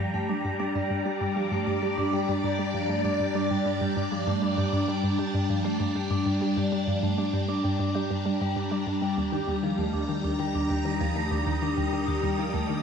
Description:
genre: ambient, sequencer-driven space music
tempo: 98 BPM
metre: 4/4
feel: straight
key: G minor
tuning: A4 = 440 Hz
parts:
  - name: phased string machine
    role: sustained chords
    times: 0.0-12.8 s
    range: Eb3 to Eb6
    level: -29 LUFS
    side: right 1 dB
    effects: ensemble chorus, phaser
  - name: vibraphone with medium mallets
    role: arpeggios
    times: 0.0-12.8 s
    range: F3 to G4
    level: -30 LUFS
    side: left 2 dB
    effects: auto-pan, ping-pong delay
  - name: hollow square pluck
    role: riff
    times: 0.0-12.8 s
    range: Eb2 to G3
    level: -30 LUFS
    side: right 1 dB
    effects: chorus, phaser, cassette tape, ping-pong delay
  - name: analog drone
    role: bass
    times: 1.5-12.8 s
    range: Eb2 to G2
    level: -40 LUFS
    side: right 1 dB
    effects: none
room: wet lush hall reverb, RT60 3.1 s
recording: none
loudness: -25 LUFS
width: side -6 dB against mid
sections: 0.0-12.8 A section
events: none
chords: 0.0 Gm; 9.2 Eb

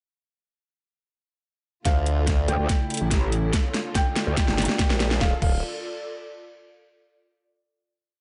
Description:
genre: heavy wobble dubstep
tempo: 143 BPM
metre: 4/4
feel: half-time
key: D harmonic minor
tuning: A4 = 442 Hz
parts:
  - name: felt-muted upright piano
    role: melody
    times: 1.9-5.6 s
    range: F5 to G5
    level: -34 LUFS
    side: equal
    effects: tape echo
  - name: dark symphonic string section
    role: sustained chords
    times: 1.9-5.4 s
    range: C#3 to G4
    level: -37 LUFS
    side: equal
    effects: none
  - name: formant-sweep wobble bass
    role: bass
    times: 1.9-5.6 s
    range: D1 to D2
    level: -26 LUFS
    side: equal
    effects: chorus, overdrive
  - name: dubstep drum kit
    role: drums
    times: 1.9-5.5 s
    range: crash cymbal, hi-hat, snare drum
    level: -30 LUFS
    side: equal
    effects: none
  - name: electronic kick drum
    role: drums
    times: 1.9-5.5 s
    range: none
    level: -26 LUFS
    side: equal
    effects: none
  - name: riser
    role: sound effects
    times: 3.7-5.2 s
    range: none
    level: -42 LUFS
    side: equal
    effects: none
  - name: airy breathy pad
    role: texture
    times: 1.9-6.8 s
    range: E4 to D5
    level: -39 LUFS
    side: equal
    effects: chorus, sidechain pumping
  - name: metallic wobble bass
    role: bass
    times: 2.5-4.7 s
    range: G1 to D2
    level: -26 LUFS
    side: equal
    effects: chorus, overdrive
room: little or no reverb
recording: nothing above 10.3 kHz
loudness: -24 LUFS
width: mono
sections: 1.9-5.2 build; 5.2-6.9 final chord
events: build-up 1.9-5.2; drum fill 1.9-5.2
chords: 1.9 Dm; 2.7 A; 3.5 Dm; 4.4 Gm; 5.2 Dm

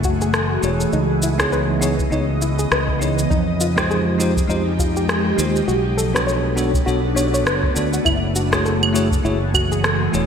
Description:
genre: sunset chillout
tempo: 101 BPM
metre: 4/4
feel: swing 58% on 16ths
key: F# minor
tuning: A4 = 440 Hz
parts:
  - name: ethereal airy pad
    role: sustained chords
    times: 0.0-10.3 s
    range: C#3 to D#5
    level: -23 LUFS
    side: right 1 dB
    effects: ensemble chorus, built-in reverb, phaser
  - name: soft round pluck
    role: arpeggios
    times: 0.0-10.0 s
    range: D#4 to C#5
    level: -26 LUFS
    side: left 3 dB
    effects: chorus, digital delay
  - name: fingered electric bass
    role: bass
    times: 0.0-10.3 s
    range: E1 to F2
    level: -22 LUFS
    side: equal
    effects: none
  - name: electronic kick drum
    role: drums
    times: 0.0-9.7 s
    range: none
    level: -24 LUFS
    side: equal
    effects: studio reverb
  - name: electronic shaker, rim click and claves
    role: drums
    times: 0.0-10.3 s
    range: none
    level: -23 LUFS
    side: right 1 dB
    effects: studio reverb, gated reverb
  - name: bell-like tine electric piano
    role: accompaniment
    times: 0.6-10.3 s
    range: Ab3 to D5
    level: -25 LUFS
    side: moving between left 3 dB and right 3 dB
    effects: medium stereo tremolo, auto-pan, low-pass filter, digital delay
room: wet lush hall reverb, RT60 2.0 s, digital ambience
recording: bright 1980s-style digital production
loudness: -16 LUFS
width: side -7 dB against mid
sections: 0.0-10.3 A section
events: none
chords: 0.0 F#m9; 0.9 C#m9; 3.3 Fm9; 5.7 Bm9; 8.1 F#m9

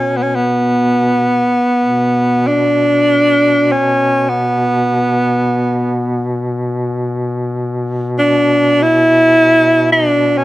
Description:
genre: caucasian folk, Caucasian lament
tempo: free time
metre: none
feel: none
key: B minor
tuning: A4 = 435 Hz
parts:
  - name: bright alto saxophone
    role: melody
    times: 0.0-10.4 s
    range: B3 to E4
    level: -11 LUFS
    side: equal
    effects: none
  - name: mellow duduk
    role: drone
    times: 0.0-10.4 s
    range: B2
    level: -19 LUFS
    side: left 1 dB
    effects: none
room: light reverb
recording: close, detailed microphones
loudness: -11 LUFS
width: side -16 dB against mid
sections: 0.0-10.4 A section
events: none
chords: none

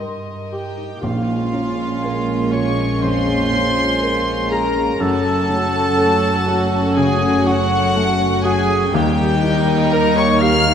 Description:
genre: cinematic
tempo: 61 BPM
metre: 4/4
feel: rubato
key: unclear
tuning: A4 = 441 Hz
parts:
  - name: bright large flute ensemble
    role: second line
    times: 0.0-0.5 s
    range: C6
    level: -38 LUFS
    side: left 2 dB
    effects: none
  - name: warm studio violin section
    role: second line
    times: 0.0-10.7 s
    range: Db4 to Eb5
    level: -24 LUFS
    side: right 1 dB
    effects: none
  - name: felt-muted upright piano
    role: accompaniment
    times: 0.0-10.7 s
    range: Bb1 to Bb4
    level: -25 LUFS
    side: equal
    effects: none
  - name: warm studio viola section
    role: accompaniment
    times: 0.0-10.7 s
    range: Gb3 to Eb5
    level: -25 LUFS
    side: right 2 dB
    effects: none
  - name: concert harp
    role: arpeggios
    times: 0.0-10.7 s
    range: Gb2 to Ab5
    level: -26 LUFS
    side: left 8 dB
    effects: none
  - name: warm studio cello section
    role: bass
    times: 0.0-10.7 s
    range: Eb2 to Bb2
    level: -25 LUFS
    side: right 3 dB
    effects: none
  - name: rich studio violin section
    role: melody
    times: 0.5-10.7 s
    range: F5 to F6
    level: -22 LUFS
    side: left 3 dB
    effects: none
  - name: dark cor anglais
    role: second line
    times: 0.5-10.7 s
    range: F4 to F5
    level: -25 LUFS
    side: right 3 dB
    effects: none
  - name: warm clarinet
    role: second line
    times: 0.5-10.7 s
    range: F4 to F5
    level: -26 LUFS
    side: left 1 dB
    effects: none
  - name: mellow French horn section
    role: sustained chords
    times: 1.0-10.7 s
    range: Gb3 to Eb4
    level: -24 LUFS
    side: left 3 dB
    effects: none
  - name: dark studio double bass section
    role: bass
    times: 1.0-10.7 s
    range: Gb1 to Eb2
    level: -26 LUFS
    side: right 4 dB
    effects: none
  - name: timpani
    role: percussion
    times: 1.0-2.5 s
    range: Bb2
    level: -30 LUFS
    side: right 2 dB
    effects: none
room: moderate scoring stage reverb, RT60 2.1 s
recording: none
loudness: -15 LUFS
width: side -8 dB against mid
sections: 0.0-1.0 A section; 1.0-10.7 A section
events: none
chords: 0.0 Cm7; 1.0 Bbm7; 5.0 Gbm; 8.9 Eb

